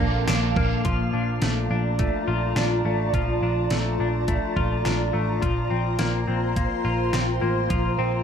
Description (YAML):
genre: dream pop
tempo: 105 BPM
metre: 4/4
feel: straight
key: Bb major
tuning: A4 = 439 Hz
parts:
  - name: clean lap steel guitar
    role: melody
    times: 0.0-0.5 s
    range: Bb4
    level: -40 LUFS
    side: left 3 dB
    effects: none
  - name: overdriven electric guitar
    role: accompaniment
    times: 0.0-0.9 s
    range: Bb2 to A4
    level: -32 LUFS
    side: right 8 dB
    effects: harmonic tremolo, analog chorus
  - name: ethereal airy pad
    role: sustained chords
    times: 0.0-8.2 s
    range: Bb3 to D6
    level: -26 LUFS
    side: equal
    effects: ensemble chorus, built-in reverb
  - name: semi-hollow electric guitar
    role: arpeggios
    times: 0.0-8.2 s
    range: F3 to F4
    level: -28 LUFS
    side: left 5 dB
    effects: analog chorus, ping-pong delay
  - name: vintage muted picked electric bass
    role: bass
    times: 0.0-8.2 s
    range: A1 to Bb1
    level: -26 LUFS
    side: right 1 dB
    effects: none
  - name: detuned 8-bit digital drum machine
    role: drums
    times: 0.3-7.8 s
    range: hi-hat, kick drum, snare drum, tambourine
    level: -26 LUFS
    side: right 1 dB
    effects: none
  - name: drifting glass-harmonics texture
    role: texture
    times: 0.3-1.1 s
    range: F5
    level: -38 LUFS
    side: right 1 dB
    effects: chorus, built-in reverb, ping-pong delay
room: moderate plate reverb, RT60 1.8 s, digital ambience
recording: none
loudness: -21 LUFS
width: side -8 dB against mid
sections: 0.9-8.2 A section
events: none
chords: 0.0 Bbmaj7; 5.4 Fsus4